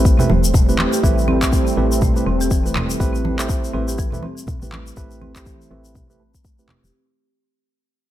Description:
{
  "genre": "afro house",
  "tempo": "122 BPM",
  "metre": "4/4",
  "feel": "swing 59% on 16ths",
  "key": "A minor",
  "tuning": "A4 = 440 Hz",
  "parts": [
    { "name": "warm analog pad", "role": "sustained chords", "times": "0.0-6.9 s", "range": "G3 to C4", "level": "-26 LUFS", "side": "right 2 dB", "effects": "chorus, sidechain pumping" },
    { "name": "tine electric piano", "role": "stabs", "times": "0.0-6.9 s", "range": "A3 to C5", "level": "-24 LUFS", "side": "right 3 dB", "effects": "sidechain pumping, low-pass filter, digital delay" },
    { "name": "woody FM bass", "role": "bass", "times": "0.0-6.9 s", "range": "E1 to B1", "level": "-23 LUFS", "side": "left 1 dB", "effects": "sidechain pumping" },
    { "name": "electronic kick drum", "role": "drums", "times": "0.1-6.6 s", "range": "none", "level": "-18 LUFS", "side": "left 1 dB", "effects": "studio reverb" },
    { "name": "egg shaker", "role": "percussion", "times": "0.1-6.9 s", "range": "none", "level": "-29 LUFS", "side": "left 4 dB", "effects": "none" },
    { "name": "congas", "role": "percussion", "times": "0.2-6.8 s", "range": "none", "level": "-24 LUFS", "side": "right 3 dB", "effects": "none" },
    { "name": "marimba with medium hard mallets", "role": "arpeggios", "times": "0.3-6.9 s", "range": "E3 to G4", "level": "-26 LUFS", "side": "left 1 dB", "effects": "sidechain pumping, low-pass filter, digital delay" },
    { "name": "electronic handclaps", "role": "drums", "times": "0.8-6.8 s", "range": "none", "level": "-26 LUFS", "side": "equal", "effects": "studio reverb" }
  ],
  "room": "little or no reverb",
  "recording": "none",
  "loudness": "-16 LUFS",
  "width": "side -13 dB against mid",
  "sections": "0.0-6.9 A section",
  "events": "fade-out 0.0-6.9; filter sweep on marimba 0.0-6.9; filter sweep on tine electric piano 0.0-6.9",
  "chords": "0.0 Am9"
}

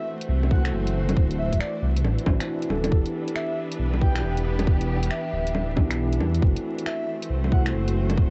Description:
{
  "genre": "future garage",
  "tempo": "137 BPM",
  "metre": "4/4",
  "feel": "swing 64% on 16ths",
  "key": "unclear",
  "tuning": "A4 = 440 Hz",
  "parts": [
    { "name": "breathy flute-like synth lead", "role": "melody", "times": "0.0-7.6 s", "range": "A4 to G5", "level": "-36 LUFS", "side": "equal", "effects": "analog chorus, tape echo" },
    { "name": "felt-muted upright piano", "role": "accompaniment", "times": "0.0-8.3 s", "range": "E3 to G4", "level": "-33 LUFS", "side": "equal", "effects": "sidechain pumping, tape echo" },
    { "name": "warm symphonic string section", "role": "sustained chords", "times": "0.0-8.3 s", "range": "E3 to C5", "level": "-35 LUFS", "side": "equal", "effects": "vintage 12-bit sampler grit, sidechain pumping" },
    { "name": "garage drum kit", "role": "drums", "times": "0.2-8.2 s", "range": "bongos, finger snaps, hi-hat", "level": "-33 LUFS", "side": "equal", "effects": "none" },
    { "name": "swelling detuned saw bass", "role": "bass", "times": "0.3-8.3 s", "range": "D1 to E2", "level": "-27 LUFS", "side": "equal", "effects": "tube saturation, sidechain pumping" },
    { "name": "electronic kick drum", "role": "drums", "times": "0.5-8.3 s", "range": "none", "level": "-23 LUFS", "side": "equal", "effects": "none" },
    { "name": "swell", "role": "sound effects", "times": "2.2-2.9 s", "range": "none", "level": "-45 LUFS", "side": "equal", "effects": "none" }
  ],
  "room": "light reverb, digital ambience",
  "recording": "vinyl crackle, nothing above 8.0 kHz",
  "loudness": "-24 LUFS",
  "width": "mono",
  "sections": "0.0-8.3 A section",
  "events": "none",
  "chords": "0.0 F#m7b5; 1.2 D9; 2.9 Em7; 6.4 F#m7b5"
}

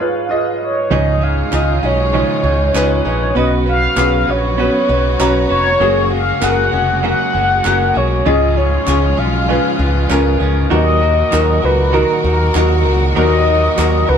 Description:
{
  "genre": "piano-driven pop",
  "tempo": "98 BPM",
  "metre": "4/4",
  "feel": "swing 56% on 16ths",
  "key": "unclear",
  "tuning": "A4 = 441 Hz",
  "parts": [
    { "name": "mellow horn-like synth lead", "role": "melody", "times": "0.0-14.2 s", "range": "A#4 to F#5", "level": "-17 LUFS", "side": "left 1 dB", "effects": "chorus" },
    { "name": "clear upright piano", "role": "accompaniment", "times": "0.0-14.2 s", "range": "G#2 to A#5", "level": "-18 LUFS", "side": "left 1 dB", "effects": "none" },
    { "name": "warm studio string section", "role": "sustained chords", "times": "0.9-14.2 s", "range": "A#2 to F#4", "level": "-24 LUFS", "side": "left 1 dB", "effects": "none" },
    { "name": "direct-recorded clean electric guitar", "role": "riff", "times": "0.9-14.2 s", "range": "C#3 to B4", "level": "-20 LUFS", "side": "right 5 dB", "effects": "none" },
    { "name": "modern bright picked electric bass", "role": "bass", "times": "0.9-14.2 s", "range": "E#1 to D#2", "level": "-17 LUFS", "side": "equal", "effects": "none" },
    { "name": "group handclap", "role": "percussion", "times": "1.5-13.9 s", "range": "none", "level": "-25 LUFS", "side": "right 4 dB", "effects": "none" }
  ],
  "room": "moderate studio reverb, RT60 0.6 s",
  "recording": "band playing live in one room, lossy compression artefacts",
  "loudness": "-12 LUFS",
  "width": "side -7 dB against mid",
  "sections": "0.9-10.7 A section; 10.7-14.2 B section",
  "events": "break 0.0-0.9",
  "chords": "0.0 C#; 0.9 C#add9; 3.4 F#add9; 8.3 C#; 10.7 D#m"
}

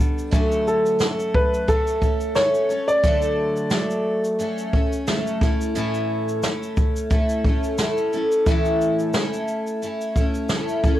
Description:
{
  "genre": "acoustic pop",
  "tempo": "88 BPM",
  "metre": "4/4",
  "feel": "swing 55% on 16ths",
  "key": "D major",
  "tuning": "A4 = 440 Hz",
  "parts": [
    { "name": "picked steel-string acoustic guitar", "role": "accompaniment", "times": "0.0-11.0 s", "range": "A2 to A4", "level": "-22 LUFS", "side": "equal", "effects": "double-tracked left and right, cassette tape" },
    { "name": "jazz brush drum kit", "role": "drums", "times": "0.0-11.0 s", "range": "kick drum, shaker, snare drum", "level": "-22 LUFS", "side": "equal", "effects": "cassette tape" },
    { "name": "clear upright piano", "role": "melody", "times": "0.7-4.2 s", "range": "A4 to D5", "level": "-21 LUFS", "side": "equal", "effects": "cassette tape" }
  ],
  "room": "light reverb",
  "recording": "home recording on cassette",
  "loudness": "-19 LUFS",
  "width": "side -13 dB against mid",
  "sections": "0.3-11.0 A section",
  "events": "none",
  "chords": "0.3 Dmaj7; 5.4 A"
}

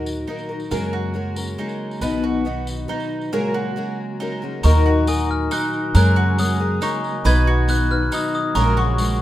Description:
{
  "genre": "indie folk with a building arrangement",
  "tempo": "138 BPM",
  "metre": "3/4",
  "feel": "straight",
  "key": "F# major",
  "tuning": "A4 = 440 Hz",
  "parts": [
    { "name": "picked twelve-string acoustic guitar", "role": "accompaniment", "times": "0.0-9.2 s", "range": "F#2 to B4", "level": "-24 LUFS", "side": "left 4 dB", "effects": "none" },
    { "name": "mellow tonewheel organ", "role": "sustained chords", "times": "0.0-9.2 s", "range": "A#2 to F#4", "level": "-31 LUFS", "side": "right 2 dB", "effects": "chorus vibrato, fast rotary speaker" },
    { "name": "mandolin", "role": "arpeggios", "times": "0.0-9.2 s", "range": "D#4 to B4", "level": "-28 LUFS", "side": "right 7 dB", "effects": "none" },
    { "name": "upright bass", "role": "bass", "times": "0.0-9.2 s", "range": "A#1 to F#2", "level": "-19 LUFS", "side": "right 1 dB", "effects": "none" },
    { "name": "tambourine", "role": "percussion", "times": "0.1-9.1 s", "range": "none", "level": "-35 LUFS", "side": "left 2 dB", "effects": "none" },
    { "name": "glockenspiel with hard plastic mallets", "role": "melody", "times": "4.6-9.2 s", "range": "C#6 to G#6", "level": "-24 LUFS", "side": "left 2 dB", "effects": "none" },
    { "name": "glockenspiel with hard plastic mallets", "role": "second line", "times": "4.6-9.2 s", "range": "G#5 to C#6", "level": "-31 LUFS", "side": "left 1 dB", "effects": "none" }
  ],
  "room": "light reverb, studio reverb",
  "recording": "rough home demo mix, faint mains hum",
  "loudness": "-18 LUFS",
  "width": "side -13 dB against mid",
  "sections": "0.0-4.6 A section; 4.6-9.2 B section",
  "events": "build-up 0.0-4.6",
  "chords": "0.0 D#m; 0.7 F#add9; 2.0 B; 3.3 F#add9/A#; 4.6 D#m; 5.9 F#add9; 7.3 B; 8.6 F#add9/A#"
}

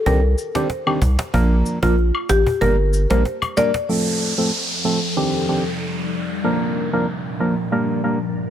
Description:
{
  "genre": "dancehall",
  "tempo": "94 BPM",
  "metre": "4/4",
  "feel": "straight",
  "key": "unclear",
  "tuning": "A4 = 440 Hz",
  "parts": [
    { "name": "marimba with medium mallets", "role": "melody", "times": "0.1-3.7 s", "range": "F4 to D5", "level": "-22 LUFS", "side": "left 2 dB", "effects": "digital delay" },
    { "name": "percussive organ stab", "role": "accompaniment", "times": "0.1-8.2 s", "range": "Eb3 to Bb4", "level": "-21 LUFS", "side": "right 1 dB", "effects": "chorus, low-pass filter" },
    { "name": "round analog bass", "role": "bass", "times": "0.1-3.2 s", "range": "G1 to C2", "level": "-17 LUFS", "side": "equal", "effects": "none" },
    { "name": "cajon", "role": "drums", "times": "0.1-3.9 s", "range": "none", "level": "-26 LUFS", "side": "equal", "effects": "none" },
    { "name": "cabasa and woodblock", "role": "percussion", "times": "0.4-3.7 s", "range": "none", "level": "-26 LUFS", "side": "left 5 dB", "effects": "none" },
    { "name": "ethereal airy pad", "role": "sustained chords", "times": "4.6-8.5 s", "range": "D4", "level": "-25 LUFS", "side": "left 2 dB", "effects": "ensemble chorus, built-in reverb, phaser, low-pass filter" },
    { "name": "downlifter", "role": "sound effects", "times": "3.9-8.5 s", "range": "none", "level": "-26 LUFS", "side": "right 1 dB", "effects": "none" }
  ],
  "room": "light reverb, small room ambience",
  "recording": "none",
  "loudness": "-17 LUFS",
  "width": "side -10 dB against mid",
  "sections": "0.0-3.9 A section; 3.9-8.5 B section",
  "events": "drum fill 3.3-3.9; filter sweep 3.9-8.5",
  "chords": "0.1 Cmadd9; 1.3 Bb; 2.6 Gm; 3.9 F; 5.2 Cmadd9; 6.4 Bb; 7.7 Gm"
}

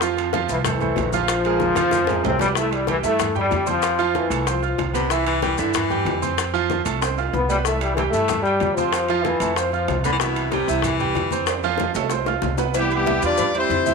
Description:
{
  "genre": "latin, salsa",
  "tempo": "188 BPM",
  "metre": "4/4",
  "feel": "straight",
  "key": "C major",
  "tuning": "A4 = 440 Hz",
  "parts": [
    { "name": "bright grand piano", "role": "accompaniment", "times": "0.0-13.9 s", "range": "E3 to F6", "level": "-23 LUFS", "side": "right 11 dB", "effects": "none" },
    { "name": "upright bass", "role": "bass", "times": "0.0-13.9 s", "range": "Bb1 to G2", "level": "-27 LUFS", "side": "equal", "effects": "none" },
    { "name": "bongos and cowbell", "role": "percussion", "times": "0.0-13.9 s", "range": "none", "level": "-29 LUFS", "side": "left 14 dB", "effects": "none" },
    { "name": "congas", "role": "percussion", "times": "0.0-13.9 s", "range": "none", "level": "-32 LUFS", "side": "left 10 dB", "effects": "none" },
    { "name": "maracas", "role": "percussion", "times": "0.0-13.9 s", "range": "none", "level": "-36 LUFS", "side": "left 16 dB", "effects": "none" },
    { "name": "timbales and agogo bells", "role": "percussion", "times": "0.2-13.9 s", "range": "none", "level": "-32 LUFS", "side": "right 12 dB", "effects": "none" },
    { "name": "mellow trombone section", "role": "melody", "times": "0.5-4.9, 7.3-10.0 s", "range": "E3 to C4", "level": "-22 LUFS", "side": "left 4 dB", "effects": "none" },
    { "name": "clear baritone saxophone", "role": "second line", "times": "4.9-6.3, 10.0-11.5 s", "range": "B2 to E3", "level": "-25 LUFS", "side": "left 10 dB", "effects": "none" },
    { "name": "bright horn section", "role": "melody", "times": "12.8-13.9 s", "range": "G3 to D5", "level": "-20 LUFS", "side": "left 4 dB", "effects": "none" }
  ],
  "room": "moderate echo chamber reverb, RT60 1.9 s",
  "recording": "1960s-style stereo with parts hard left and right",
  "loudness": "-18 LUFS",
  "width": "side -4 dB against mid",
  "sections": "0.0-2.6 A section; 2.6-12.7 B section; 12.7-13.9 C section",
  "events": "drum fill 1.6-2.6, 7.0-7.7, 11.5-12.7",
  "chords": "0.0 Fmaj7; 1.3 Bbsus2; 2.6 C; 3.8 Fmaj7; 5.1 C; 6.4 F; 7.7 C; 8.9 Fmaj7; 10.2 Cmaj7; 11.5 F; 12.7 Cmaj7"
}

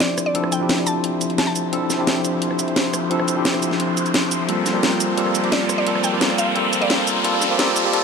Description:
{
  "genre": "liquid drum and bass",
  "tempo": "174 BPM",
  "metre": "4/4",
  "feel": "straight",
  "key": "D minor",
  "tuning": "A4 = 439 Hz",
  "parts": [
    { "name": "mallet-like synth pluck", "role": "melody", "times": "0.0-2.0, 5.5-7.2 s", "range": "D5 to A5", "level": "-27 LUFS", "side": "left 1 dB", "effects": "chorus, ping-pong delay" },
    { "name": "tine electric piano", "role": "accompaniment", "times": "0.0-8.0 s", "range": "F3 to A4", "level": "-21 LUFS", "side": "left 1 dB", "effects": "fast stereo tremolo, ping-pong delay" },
    { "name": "lush unison pad", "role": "sustained chords", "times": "0.0-8.0 s", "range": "F3 to C5", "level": "-27 LUFS", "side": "equal", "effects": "chorus" },
    { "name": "warm sub bass", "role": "bass", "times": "0.0-7.8 s", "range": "none", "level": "barely audible", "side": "none", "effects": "none" },
    { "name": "garage drum kit", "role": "drums", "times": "0.0-8.0 s", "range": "cabasa, hi-hat, rim click, snare drum", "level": "-22 LUFS", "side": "equal", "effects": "studio reverb" },
    { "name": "riser", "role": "sound effects", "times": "1.2-8.0 s", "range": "none", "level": "-26 LUFS", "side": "equal", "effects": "none" }
  ],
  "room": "light reverb",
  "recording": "dark, warm production, high-pass filter",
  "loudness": "-17 LUFS",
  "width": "side -5 dB against mid",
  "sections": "0.0-8.0 A section",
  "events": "build-up 0.0-8.0; filter sweep 0.0-8.0; riser 1.2-8.0",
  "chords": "0.0 Dm9; 4.5 Gm11"
}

